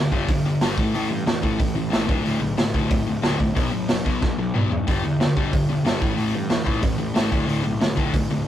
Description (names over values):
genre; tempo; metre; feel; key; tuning
punk rock; 183 BPM; 4/4; straight; D major; A4 = 435 Hz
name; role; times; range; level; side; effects
sludgy distorted guitar; riff; 0.0-8.5 s; D2 to B3; -23 LUFS; left 1 dB; overdrive
fuzz picked electric bass; bass; 0.0-8.4 s; D1 to G2; -30 LUFS; right 1 dB; overdrive
raw garage drum kit; drums; 0.1-8.2 s; hi-hat, kick drum, snare drum, toms; -23 LUFS; right 1 dB; none
room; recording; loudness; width
light reverb; rough rehearsal-room recording, warm saturation; -19 LUFS; side -11 dB against mid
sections
0.0-8.5 A section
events
drum fill 4.2-4.9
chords
0.0 G5; 0.8 A5; 2.1 D5; 3.6 B5; 4.9 G5; 6.0 A5; 7.3 D5